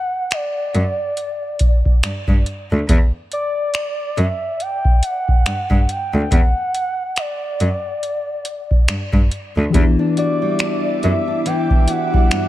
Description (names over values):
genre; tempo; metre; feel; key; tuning
contemporary R&B; 70 BPM; 4/4; swing 58% on 16ths; E minor; A4 = 439 Hz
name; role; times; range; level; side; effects
gliding portamento lead; melody; 0.0-12.5 s; D5 to G5; -23 LUFS; equal; chorus, tape echo
booming analog drum machine; drums; 0.3-12.5 s; finger snaps, hi-hat, kick drum; -16 LUFS; equal; none
bright cello; bass; 0.7-12.4 s; D2 to G2; -19 LUFS; equal; none
muted felt-like synth keys; accompaniment; 9.7-12.5 s; E3 to G4; -21 LUFS; left 4 dB; chorus
ethereal airy pad; sustained chords; 10.1-12.5 s; E4 to D6; -25 LUFS; right 1 dB; ensemble chorus, built-in reverb
flamenco guitar; arpeggios; 9.7-12.5 s; E3 to F#4; -24 LUFS; right 1 dB; tape echo
room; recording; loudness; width
light reverb, digital ambience; none; -16 LUFS; side -14 dB against mid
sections
0.0-12.5 A section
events
none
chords
0.0 Em9